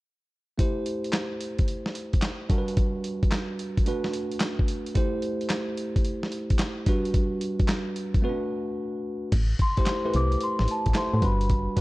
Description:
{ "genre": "R&B, new jack swing", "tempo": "110 BPM", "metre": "4/4", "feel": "swing 67% on 16ths", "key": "A dorian", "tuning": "A4 = 436 Hz", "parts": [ { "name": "bell-like tine electric piano", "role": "accompaniment", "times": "0.6-11.8 s", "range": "G3 to C5", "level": "-29 LUFS", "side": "right 1 dB", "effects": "phaser" }, { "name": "dusty soul sampler-style drum kit", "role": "drums", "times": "0.6-11.8 s", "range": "crash cymbal, handclaps, hi-hat, kick drum, snare drum", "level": "-25 LUFS", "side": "equal", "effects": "none" }, { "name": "solid FM bass", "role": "bass", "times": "9.3-11.7 s", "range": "G1 to A2", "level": "-24 LUFS", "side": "equal", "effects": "none" }, { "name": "large celesta", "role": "melody", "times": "9.6-11.8 s", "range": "A5 to D6", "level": "-29 LUFS", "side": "left 1 dB", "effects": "none" } ], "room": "little or no reverb", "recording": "dark, warm production", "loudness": "-24 LUFS", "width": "side -20 dB against mid", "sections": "0.6-9.3 A section; 9.3-11.8 B section", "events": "break 8.2-9.3", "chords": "0.6 Am7; 2.5 Gmaj7; 3.9 Bm7; 5.0 Am7; 6.9 Gmaj7; 8.2 Bm7; 9.3 Am7; 11.2 Gmaj7" }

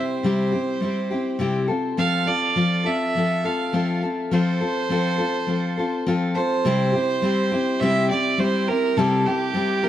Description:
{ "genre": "rock", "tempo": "103 BPM", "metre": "4/4", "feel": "straight", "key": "C major", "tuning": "A4 = 440 Hz", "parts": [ { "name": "rich fiddle", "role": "melody", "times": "0.0-9.9 s", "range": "G4 to F5", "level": "-24 LUFS", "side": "right 4 dB", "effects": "tape echo" }, { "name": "picked steel-string acoustic guitar", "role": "accompaniment", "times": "0.0-9.9 s", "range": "C3 to A4", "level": "-21 LUFS", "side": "left 2 dB", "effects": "none" } ], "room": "light reverb", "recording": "dark, warm production", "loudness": "-20 LUFS", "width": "side -11 dB against mid", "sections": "0.0-6.6 A section; 6.6-9.9 B section", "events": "none", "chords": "0.0 C; 1.7 F; 6.6 C" }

